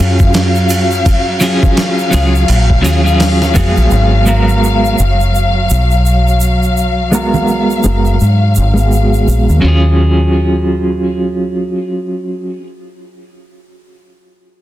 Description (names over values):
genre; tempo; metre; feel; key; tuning
trip hop; 84 BPM; 4/4; swing 60% on 16ths; Eb minor; A4 = 436 Hz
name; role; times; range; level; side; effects
electric guitar at the edge of break-up; accompaniment; 0.0-12.7 s; Gb3 to Bb4; -15 LUFS; right 1 dB; tremolo, low-pass filter, tape echo
warm studio string section; sustained chords; 0.0-9.6 s; Gb3 to F5; -16 LUFS; left 2 dB; none
deep dub fingered electric bass; bass; 0.0-11.7 s; Gb1 to Ab2; -12 LUFS; equal; none
dusty soul sampler-style drum kit; drums; 0.2-3.8 s; hi-hat, kick drum, ride cymbal, snare drum; -15 LUFS; equal; studio reverb
egg shaker and congas; percussion; 0.2-9.6 s; none; -22 LUFS; right 5 dB; none
room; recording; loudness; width
light reverb; dense, heavily limited modern master; -9 LUFS; side -14 dB against mid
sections
0.0-9.6 A section; 9.6-12.5 B section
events
filter sweep on clean electric guitar 0.0-9.6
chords
0.0 Ebm11; 3.9 Abm9; 9.6 Ebm11